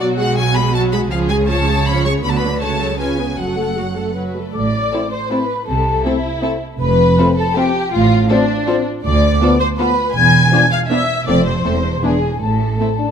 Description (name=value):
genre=cinematic, playful, whimsical film cue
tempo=160 BPM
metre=3/4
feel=straight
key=F# minor, A minor from 4.5 s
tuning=A4 = 440 Hz
part: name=rich studio violin section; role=melody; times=0.0-12.9 s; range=E4 to C#6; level=-25 LUFS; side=left 2 dB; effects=none
part: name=warm studio violin section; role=second line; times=0.0-13.1 s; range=D4 to G#5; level=-21 LUFS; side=left 4 dB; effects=none
part: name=dark studio viola section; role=accompaniment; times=0.0-12.9 s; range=E#3 to A4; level=-22 LUFS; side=equal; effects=none
part: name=dark studio double bass section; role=bass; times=0.0-12.7 s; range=E1 to D2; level=-20 LUFS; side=right 4 dB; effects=none
part: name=warm studio cello section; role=bass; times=0.0-12.7 s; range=D2 to D3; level=-21 LUFS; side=right 3 dB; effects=none
part: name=large flute ensemble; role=second line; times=4.5-13.1 s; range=D5 to G#6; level=-19 LUFS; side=left 2 dB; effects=none
part: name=mellow French horn section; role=sustained chords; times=4.9-13.1 s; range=F3 to D4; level=-21 LUFS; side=left 5 dB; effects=none
room=light reverb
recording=close, detailed microphones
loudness=-14 LUFS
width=side -7 dB against mid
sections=0.0-4.5 A section; 4.5-13.1 B section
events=none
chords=0.0 B5; 1.1 C#; 2.2 Bm/D; 2.6 F#m/C#; 3.0 C#7; 3.4 F#m; 4.5 Am; 5.7 Am/C; 6.8 F; 7.9 F/A; 9.0 Bdim/D; 10.2 E7b9; 11.3 F; 11.6 Am/E; 12.0 E7; 12.4 N.C.